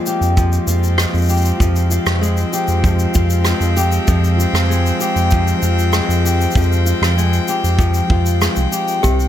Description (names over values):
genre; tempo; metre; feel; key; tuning
folktronica; 97 BPM; 4/4; straight; unclear; A4 = 438 Hz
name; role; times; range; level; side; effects
rich string quartet; sustained chords; 0.0-9.3 s; C3 to G5; -22 LUFS; equal; none
fingerpicked steel-string acoustic guitar; arpeggios; 0.0-9.3 s; C3 to G4; -20 LUFS; left 2 dB; ping-pong delay
shaker and rim click; drums; 0.1-9.3 s; none; -23 LUFS; equal; none
round analog bass; bass; 0.2-9.3 s; C2 to F2; -16 LUFS; equal; none
kick drum; drums; 0.4-9.2 s; none; -18 LUFS; equal; none
toy piano; second line; 9.0-9.2 s; G4; -20 LUFS; left 3 dB; none
room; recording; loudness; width
studio reverb; none; -13 LUFS; side -11 dB against mid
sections
0.0-9.3 A section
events
none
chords
0.0 Fmadd9